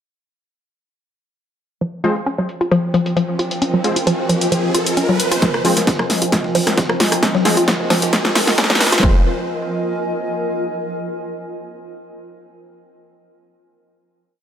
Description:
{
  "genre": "driving peak-time techno",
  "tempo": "133 BPM",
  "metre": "4/4",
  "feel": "straight",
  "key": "F minor",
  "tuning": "A4 = 442 Hz",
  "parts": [
    { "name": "woody wave-folded pluck", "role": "riff", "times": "1.8-9.2 s", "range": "F3 to F4", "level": "-20 LUFS", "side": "left 1 dB", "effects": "chorus, sidechain pumping, dub echo" },
    { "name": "swarming drone", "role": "drone", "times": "2.6-9.1 s", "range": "F3 to C4", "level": "-26 LUFS", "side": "right 1 dB", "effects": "built-in reverb, sidechain pumping" },
    { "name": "techno drum kit", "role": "drums", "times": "1.8-9.1 s", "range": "hi-hat, rim click, snare drum", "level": "-19 LUFS", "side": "equal", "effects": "overdrive, sidechain pumping on hats, low-pass filter on hats, studio reverb, low-pass filter on snare" },
    { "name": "riser", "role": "sound effects", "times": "3.4-9.0 s", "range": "none", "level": "-26 LUFS", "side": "right 1 dB", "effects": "none" },
    { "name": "granular cloud pad", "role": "texture", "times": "3.0-10.8 s", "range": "F4 to Ab5", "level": "-24 LUFS", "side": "equal", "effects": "built-in reverb, sidechain pumping" },
    { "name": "rave stab", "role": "stabs", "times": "2.0-9.2 s", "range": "F3 to C4", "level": "-23 LUFS", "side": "equal", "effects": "chorus, built-in reverb, sidechain pumping, dub echo" },
    { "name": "dusty soul sampler-style drum kit", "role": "drums", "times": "5.4-9.0 s", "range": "hi-hat, snare drum", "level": "-29 LUFS", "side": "right 2 dB", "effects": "none" },
    { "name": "electronic kick drum", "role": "drums", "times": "5.4-9.1 s", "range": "none", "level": "-18 LUFS", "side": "equal", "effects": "overdrive, high-pass filter on kick, studio reverb" },
    { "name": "tight sequencer bass", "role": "bass", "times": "5.5-9.2 s", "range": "F1 to Gb1", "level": "-28 LUFS", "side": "equal", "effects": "none" }
  ],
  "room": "moderate stone room reverb, RT60 1.3 s",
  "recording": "high-pass filter",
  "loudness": "-15 LUFS",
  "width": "side -9 dB against mid",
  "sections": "1.8-5.4 intro; 5.4-9.0 build; 9.0-10.8 final chord",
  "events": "filter sweep on synth arpeggio sound 1.8-5.4, 5.4-9.0; riser 3.4-5.4, 5.4-9.0; build-up 5.4-9.0; drum fill 5.4-9.0",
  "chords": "1.8 Fm",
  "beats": "| 1.81 2.26 2.71 3.17 | 3.62 4.07 4.52 4.97 | 5.42 5.87 6.32 6.78 | 7.23 7.68 8.13 8.58 | 9.03 9.48 9.93 10.38"
}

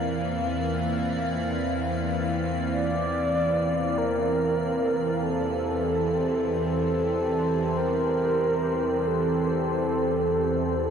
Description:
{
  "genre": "dark ambient drone",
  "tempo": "free time",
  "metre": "none",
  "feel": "none",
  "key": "unclear",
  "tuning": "A4 = 438 Hz",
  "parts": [
    { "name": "dark analog pad", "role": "sustained chords", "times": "0.0-10.9 s", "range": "E3 to F5", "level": "-26 LUFS", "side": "right 1 dB", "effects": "chorus" },
    { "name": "bowed-like drone", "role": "drone", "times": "0.0-10.9 s", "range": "E2 to E3", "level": "-32 LUFS", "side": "left 2 dB", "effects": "built-in reverb, phaser" },
    { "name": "icy glass pad", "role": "texture", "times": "0.0-10.9 s", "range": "D5", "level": "-42 LUFS", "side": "right 2 dB", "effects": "chorus, built-in reverb" },
    { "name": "mellow horn-like synth lead", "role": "melody", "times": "2.7-10.9 s", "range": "A4 to D5", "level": "-26 LUFS", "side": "equal", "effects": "chorus, tape echo" }
  ],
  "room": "wet huge ambient reverb, RT60 8.9 s",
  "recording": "dark, warm production",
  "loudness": "-23 LUFS",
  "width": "side -7 dB against mid",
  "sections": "0.0-10.9 A section",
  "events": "fade-out on ambient pad 0.0-10.9",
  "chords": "0.0 Gm/E",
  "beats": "free time"
}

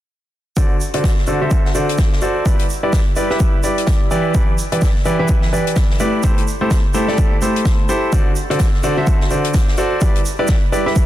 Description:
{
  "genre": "piano house",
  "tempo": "127 BPM",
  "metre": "4/4",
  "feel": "swing 59% on 16ths",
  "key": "unclear",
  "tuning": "A4 = 439 Hz",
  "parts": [
    { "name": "clear concert grand piano", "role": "riff", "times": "0.6-11.1 s", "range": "D3 to E5", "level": "-18 LUFS", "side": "equal", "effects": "sidechain pumping, low-pass filter, dub echo" },
    { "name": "electronic kick drum", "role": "drums", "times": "0.6-11.1 s", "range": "none", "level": "-16 LUFS", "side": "equal", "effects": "overdrive" },
    { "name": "open jazz drum kit", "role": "drums", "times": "0.6-11.1 s", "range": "hi-hat, shaker, snare drum", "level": "-28 LUFS", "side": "equal", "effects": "sidechain pumping on hats, high-pass filter on hats, high-pass filter on snare, sidechain pumping on perc, high-pass filter on perc, high-pass filter on room" }
  ],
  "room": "little or no reverb",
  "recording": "dense, heavily limited modern master",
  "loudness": "-14 LUFS",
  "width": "side -13 dB against mid",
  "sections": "0.6-11.1 A section",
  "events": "none",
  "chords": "0.6 D7; 2.5 G6; 4.3 Em7; 6.2 Am7; 8.1 D7; 10.0 G6",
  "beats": "| 0.57 1.04 1.51 1.98 | 2.46 2.93 3.40 3.87 | 4.35 4.82 5.29 5.76 | 6.24 6.71 7.18 7.65 | 8.12 8.60 9.07 9.54 | 10.02 10.49 10.96"
}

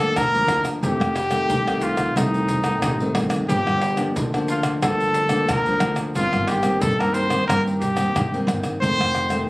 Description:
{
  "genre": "samba and choro",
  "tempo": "90 BPM",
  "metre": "4/4",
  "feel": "straight",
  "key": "unclear",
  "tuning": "A4 = 440 Hz",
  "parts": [
    { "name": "clear trumpet", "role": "melody", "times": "0.0-9.4 s", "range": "Eb4 to C5", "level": "-22 LUFS", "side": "equal", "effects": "none" },
    { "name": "nylon-string guitar", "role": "accompaniment", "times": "0.0-9.5 s", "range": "F2 to D4", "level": "-25 LUFS", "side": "left 1 dB", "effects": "none" },
    { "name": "upright bass", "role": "bass", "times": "0.0-9.4 s", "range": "F1 to G2", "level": "-26 LUFS", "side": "right 1 dB", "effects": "none" },
    { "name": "egg shaker, surdo, pandeiro and tamborim", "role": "percussion", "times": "0.2-9.5 s", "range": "none", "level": "-26 LUFS", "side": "equal", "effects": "none" }
  ],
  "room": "moderate large studio reverb, RT60 0.8 s",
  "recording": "recorded on a phone in the room, club reverb, compression",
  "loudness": "-18 LUFS",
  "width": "side -21 dB against mid",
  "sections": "0.0-9.5 A section",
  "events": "none",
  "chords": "0.0 Gm7; 0.8 F7; 3.5 Gm7; 6.2 Cm7/G; 8.8 F7",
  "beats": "0.16 | 0.83 1.50 2.16 2.83 | 3.49 4.16 4.83 5.49 | 6.16 6.83 7.49 8.16 | 8.83 9.49"
}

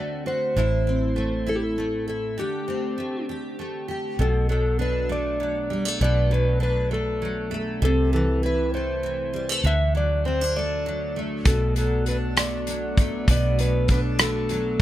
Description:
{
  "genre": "six-eight pop ballad",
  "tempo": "66 BPM (dotted quarters)",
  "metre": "6/8",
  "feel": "straight",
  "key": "unclear",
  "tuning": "A4 = 439 Hz",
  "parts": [
    { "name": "clean lap steel guitar", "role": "melody", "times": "0.0-14.8 s", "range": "G4 to E5", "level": "-27 LUFS", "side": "equal", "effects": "digital delay" },
    { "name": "picked steel-string acoustic guitar", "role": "accompaniment", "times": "0.0-14.8 s", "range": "A2 to G4", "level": "-27 LUFS", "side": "equal", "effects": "double-tracked left and right" },
    { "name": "vintage muted fingered electric bass", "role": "bass", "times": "0.0-14.8 s", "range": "A1 to D2", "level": "-25 LUFS", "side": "equal", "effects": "none" },
    { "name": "chorused pulse-width pad", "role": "sustained chords", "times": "11.5-14.8 s", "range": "B3 to D5", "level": "-33 LUFS", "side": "equal", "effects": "none" },
    { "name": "loose indie drum kit", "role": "drums", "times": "11.5-14.8 s", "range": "hi-hat, kick drum, rim click", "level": "-21 LUFS", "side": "equal", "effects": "none" }
  ],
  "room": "studio reverb",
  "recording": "none",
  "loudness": "-21 LUFS",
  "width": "side -13 dB against mid",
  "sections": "0.0-4.2 A section; 4.2-14.8 B section",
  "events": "break 2.4-4.2",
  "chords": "0.0 D7; 0.6 Am; 2.4 D7sus4; 4.2 Bm7; 7.8 Am/C; 9.6 D; 11.5 Bm7",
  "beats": "| 0.57 1.48 | 2.38 3.29 | 4.19 5.10 | 6.01 6.91 | 7.82 8.73 | 9.64 10.55 | 11.46 12.37 | 13.28 14.19"
}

